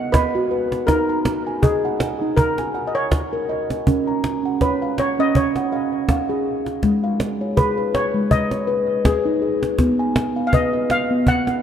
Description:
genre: world meditative, meditative tuned percussion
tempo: 81 BPM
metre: 4/4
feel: swing 56% on 16ths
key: G# dorian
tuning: A4 = 440 Hz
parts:
  - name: steel pan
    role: melody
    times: 0.0-11.6 s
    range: G#4 to F#5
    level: -23 LUFS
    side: left 1 dB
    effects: tape echo
  - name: steel tongue drum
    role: arpeggios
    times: 0.0-11.6 s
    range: G#3 to A#5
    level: -20 LUFS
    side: equal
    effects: tape echo
  - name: cajon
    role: percussion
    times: 0.1-11.6 s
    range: none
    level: -21 LUFS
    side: right 1 dB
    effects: none
room: wet cathedral reverb, RT60 4.5 s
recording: dark, warm production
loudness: -17 LUFS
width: side -9 dB against mid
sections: 0.0-11.6 A section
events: none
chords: 0.0 B; 0.9 D#m; 3.9 C#; 6.8 G#m; 9.8 B

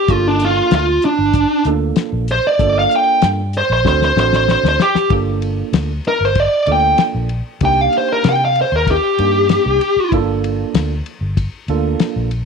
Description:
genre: straight-eighth soul blues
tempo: 96 BPM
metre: 4/4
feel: straight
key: G minor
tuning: A4 = 442 Hz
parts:
  - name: smooth overdriven lead guitar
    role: melody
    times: 0.0-10.1 s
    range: D4 to G5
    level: -14 LUFS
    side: equal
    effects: none
  - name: tine electric piano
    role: accompaniment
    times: 0.1-12.3 s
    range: Bb3 to A4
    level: -22 LUFS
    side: right 15 dB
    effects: medium stereo tremolo
  - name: vintage muted fingered electric bass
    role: bass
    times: 0.1-12.4 s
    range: G1 to C3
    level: -19 LUFS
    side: equal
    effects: none
  - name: cloth-damped thuddy drum kit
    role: drums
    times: 0.1-12.5 s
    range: hi-hat, kick drum, ride cymbal, snare drum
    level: -18 LUFS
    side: left 6 dB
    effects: none
room: light reverb, small room ambience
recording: 1960s-style stereo with parts hard left and right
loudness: -13 LUFS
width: side -5 dB against mid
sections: 0.0-5.1 A section; 5.1-12.5 A section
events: lead electric guitar solo 0.0-12.5; drum fill 3.9-5.1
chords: 0.1 Gm7; 3.9 D7; 5.1 Gm7; 7.6 Cm7; 10.1 Gm7

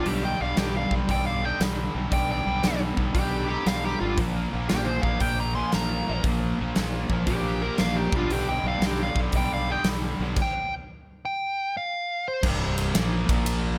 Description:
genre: blues rock power trio and southern rock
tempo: 116 BPM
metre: 4/4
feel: swing 66% on 8ths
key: unclear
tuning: A4 = 440 Hz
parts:
  - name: dark smooth lead guitar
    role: melody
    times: 0.0-12.4 s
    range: F4 to C6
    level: -31 LUFS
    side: equal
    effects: overdrive
  - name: bluesy overdriven lead guitar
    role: second line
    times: 0.0-9.9 s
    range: D4 to Ab5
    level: -39 LUFS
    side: equal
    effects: distortion
  - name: cranked stack guitar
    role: riff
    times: 0.0-13.8 s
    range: C2 to Bb3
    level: -32 LUFS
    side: equal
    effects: overdrive, spring reverb
  - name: fuzz fingered electric bass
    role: bass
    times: 0.0-13.8 s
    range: C1 to B1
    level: -32 LUFS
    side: equal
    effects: overdrive
  - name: big rock drum kit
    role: drums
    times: 0.1-13.6 s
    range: crash cymbal, hi-hat, kick drum, ride cymbal, snare drum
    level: -30 LUFS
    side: equal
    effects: none
room: little or no reverb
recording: none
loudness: -26 LUFS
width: mono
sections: 0.0-12.4 A section; 12.4-13.8 B section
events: stop 10.4-12.4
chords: 0.0 G/B; 4.2 Bb5; 8.1 G/B; 12.4 C5; 13.2 Bb5

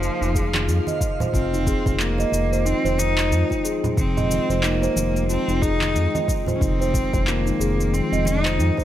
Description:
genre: organic downtempo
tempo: 91 BPM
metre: 4/4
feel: swing 59% on 16ths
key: F minor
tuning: A4 = 441 Hz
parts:
  - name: clear cello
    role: melody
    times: 0.0-8.8 s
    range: F3 to Eb4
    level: -26 LUFS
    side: left 1 dB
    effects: digital delay
  - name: warbly tape-like pad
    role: sustained chords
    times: 0.0-8.8 s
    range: Db3 to C5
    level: -29 LUFS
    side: left 4 dB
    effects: chorus, built-in reverb, sidechain pumping
  - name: steel tongue drum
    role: arpeggios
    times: 0.0-8.8 s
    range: Eb4 to Eb5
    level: -25 LUFS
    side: right 2 dB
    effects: tape echo
  - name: smooth gliding synth bass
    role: bass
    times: 0.0-8.7 s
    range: F1 to F2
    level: -23 LUFS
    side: equal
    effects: sidechain pumping
  - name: electronic shaker and handclaps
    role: drums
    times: 0.0-8.8 s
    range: none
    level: -28 LUFS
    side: left 1 dB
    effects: studio reverb
  - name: twinkling granular texture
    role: texture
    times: 0.0-1.4 s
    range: F5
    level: -36 LUFS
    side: right 2 dB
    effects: built-in reverb
  - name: electronic kick drum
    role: drums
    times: 0.3-8.8 s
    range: none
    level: -24 LUFS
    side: equal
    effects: studio reverb
  - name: bongos and congas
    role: percussion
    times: 0.5-8.8 s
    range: none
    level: -31 LUFS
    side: right 2 dB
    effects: none
room: light reverb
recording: none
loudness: -19 LUFS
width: side -12 dB against mid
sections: 0.0-1.3 A section; 1.3-8.8 B section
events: none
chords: 0.0 Bbmadd9/F; 1.3 Fm7

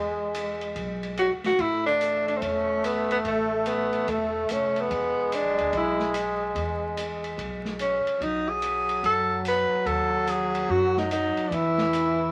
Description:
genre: jazz, small-group swing and bop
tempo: 145 BPM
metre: 4/4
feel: swing 65% on 8ths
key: E major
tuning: A4 = 440 Hz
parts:
  - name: warm trombone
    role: second line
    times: 0.0-12.3 s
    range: E3 to A3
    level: -32 LUFS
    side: equal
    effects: none
  - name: upright bass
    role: bass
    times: 0.0-12.3 s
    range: E1 to F#2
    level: -40 LUFS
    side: equal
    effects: none
  - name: open jazz drum kit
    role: drums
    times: 0.3-12.1 s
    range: hi-hat, kick drum, ride cymbal, snare drum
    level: -39 LUFS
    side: equal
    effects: none
  - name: clear tenor saxophone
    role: melody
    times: 1.2-12.3 s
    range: A3 to B4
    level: -26 LUFS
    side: equal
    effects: none
room: moderate studio reverb, RT60 0.6 s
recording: vinyl crackle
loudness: -26 LUFS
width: mono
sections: 0.0-12.3 A section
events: none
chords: 0.0 E; 1.6 A; 4.9 E; 8.2 B7; 11.5 E5

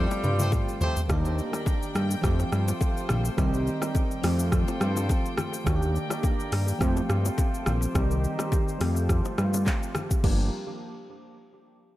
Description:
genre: afrobeats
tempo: 105 BPM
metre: 4/4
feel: swing 55% on 16ths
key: unclear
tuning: A4 = 440 Hz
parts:
  - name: warm alto saxophone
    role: melody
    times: 0.0-0.8 s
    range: G3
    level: -34 LUFS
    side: equal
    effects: analog delay
  - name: clear horn section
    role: second line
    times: 0.0-1.0 s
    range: A3 to C5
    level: -36 LUFS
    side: equal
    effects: analog delay
  - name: glassy digital keys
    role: accompaniment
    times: 0.0-10.5 s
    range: Eb3 to G4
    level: -32 LUFS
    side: right 1 dB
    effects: chorus, low-pass filter, analog delay
  - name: warm studio string section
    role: sustained chords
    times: 0.0-10.5 s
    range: Eb3 to G5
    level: -36 LUFS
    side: equal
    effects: low-pass filter
  - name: fat analog bass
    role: bass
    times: 0.0-10.5 s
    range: G1 to G2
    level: -25 LUFS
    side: equal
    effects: none
  - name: afro-pop drum kit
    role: drums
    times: 0.1-10.4 s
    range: crash cymbal, handclaps, hi-hat, kick drum, rim click, shaker, toms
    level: -28 LUFS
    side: equal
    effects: none
  - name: bongos and congas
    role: percussion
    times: 0.1-10.5 s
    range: none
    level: -37 LUFS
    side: left 4 dB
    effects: none
room: light reverb, studio ambience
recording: echo-heavy mix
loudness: -24 LUFS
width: side -15 dB against mid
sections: 0.0-1.1 A section; 1.1-10.2 B section; 10.2-12.0 C section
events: drum fill 0.0-1.1; band accent 0.0-1.1; filter sweep 1.1-10.2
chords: 0.0 Fadd9; 1.1 Ebmaj7; 2.2 Fadd9; 3.4 Cm; 4.2 Fadd9; 5.7 Ebmaj7; 6.8 Fadd9; 8.0 Cm; 8.8 Fadd9; 10.2 Gm7

